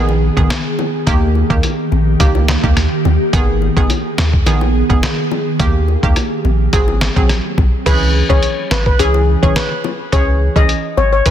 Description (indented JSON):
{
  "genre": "dancehall",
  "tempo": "106 BPM",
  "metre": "4/4",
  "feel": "straight",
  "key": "G# harmonic minor",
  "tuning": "A4 = 438 Hz",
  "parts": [
    { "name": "analog pluck", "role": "accompaniment", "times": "0.0-11.3 s", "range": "D#3 to G#4", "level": "-20 LUFS", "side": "right 3 dB", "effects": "chorus" },
    { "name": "ethereal airy pad", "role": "sustained chords", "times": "0.0-7.9 s", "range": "D#3 to G#4", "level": "-21 LUFS", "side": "right 1 dB", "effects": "ensemble chorus, built-in reverb, sidechain pumping" },
    { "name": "punchy sub bass", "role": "bass", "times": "0.0-11.3 s", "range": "G#1 to D#2", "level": "-15 LUFS", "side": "equal", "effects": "none" },
    { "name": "bongos", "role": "percussion", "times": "0.1-11.1 s", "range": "none", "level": "-26 LUFS", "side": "left 9 dB", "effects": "none" },
    { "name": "trip hop sampler-style drum kit", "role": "drums", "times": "0.4-11.3 s", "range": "crash cymbal, handclaps, hi-hat, kick drum, rim click, snare drum", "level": "-16 LUFS", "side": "equal", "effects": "none" },
    { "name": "steel pan", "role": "melody", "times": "7.9-11.3 s", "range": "G#4 to D#5", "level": "-17 LUFS", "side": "left 4 dB", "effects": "ping-pong delay" }
  ],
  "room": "digital ambience",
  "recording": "dense, heavily limited modern master",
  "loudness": "-12 LUFS",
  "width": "side -10 dB against mid",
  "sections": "0.0-7.9 A section; 7.9-11.3 B section",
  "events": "none",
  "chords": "0.0 G#m; 1.1 D#; 3.3 G#m; 5.6 D#; 6.7 G#7; 7.9 C#m",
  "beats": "0.50 | 1.07 1.64 2.20 2.77 | 3.33 3.90 4.47 5.03 | 5.60 6.17 6.73 7.30 | 7.86 8.43 8.99 9.56 | 10.13 10.69 11.26"
}